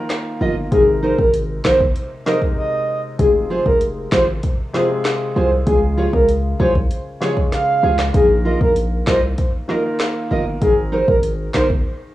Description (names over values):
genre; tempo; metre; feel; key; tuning
dancehall; 97 BPM; 4/4; straight; unclear; A4 = 440 Hz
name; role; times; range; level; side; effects
warm grand piano; accompaniment; 0.0-12.1 s; C3 to Bb4; -25 LUFS; left 3 dB; cassette tape
afro-pop drum kit; drums; 0.1-11.8 s; handclaps, hi-hat, kick drum, snare drum; -20 LUFS; equal; cassette tape
fingerpicked steel-string acoustic guitar; arpeggios; 0.4-11.7 s; Eb4 to Eb5; -20 LUFS; right 3 dB; cassette tape
hard-hitting 808-style bass; bass; 0.4-11.8 s; F1 to Db2; -21 LUFS; equal; none
breathy flute-like synth lead; melody; 0.7-11.7 s; Ab4 to F5; -18 LUFS; equal; chorus, cassette tape, tape echo
room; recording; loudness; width
light reverb; home recording on cassette, studio reverb; -15 LUFS; side -15 dB against mid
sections
0.0-12.1 A section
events
drums muted 2.6-3.2; break 11.9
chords
0.0 Bbsus4; 0.7 Abadd9; 3.2 Fm; 5.7 Db; 8.1 Bbsus4; 10.6 Abadd9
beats
0.10 | 0.72 1.34 1.96 2.58 | 3.19 3.81 4.43 5.05 | 5.67 6.29 6.91 7.53 | 8.14 8.76 9.38 10.00 | 10.62 11.24 11.86